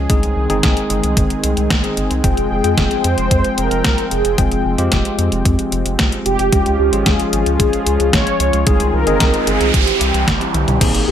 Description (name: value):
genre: italo disco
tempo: 112 BPM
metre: 4/4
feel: straight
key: F minor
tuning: A4 = 439 Hz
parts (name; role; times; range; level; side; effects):
- warm analog pad; sustained chords; 0.0-11.1 s; Eb3 to G5; -22 LUFS; equal; chorus
- tine electric piano; stabs; 0.0-11.1 s; G3 to G5; -22 LUFS; left 3 dB; medium stereo tremolo, tape echo
- round analog bass; bass; 0.0-11.1 s; F1 to F2; -19 LUFS; equal; none
- detuned 8-bit digital drum machine; drums; 0.1-11.1 s; crash cymbal, hi-hat, snare drum, toms; -19 LUFS; equal; overdrive, gated reverb
- electronic kick drum; drums; 0.1-10.9 s; none; -18 LUFS; equal; overdrive
- mellow synth brass; melody; 2.2-11.1 s; G4 to Db5; -19 LUFS; right 1 dB; chorus, phaser, ping-pong delay
- noise sweep; sound effects; 9.0-10.8 s; none; -21 LUFS; right 4 dB; none
room: light reverb, digital ambience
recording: none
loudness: -13 LUFS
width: side -9 dB against mid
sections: 0.0-10.8 A section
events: noise sweep 9.0-10.8; drum fill 10.5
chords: 0.1 Ab; 2.2 Fmadd9; 6.5 Db; 8.7 Ab; 9.7 C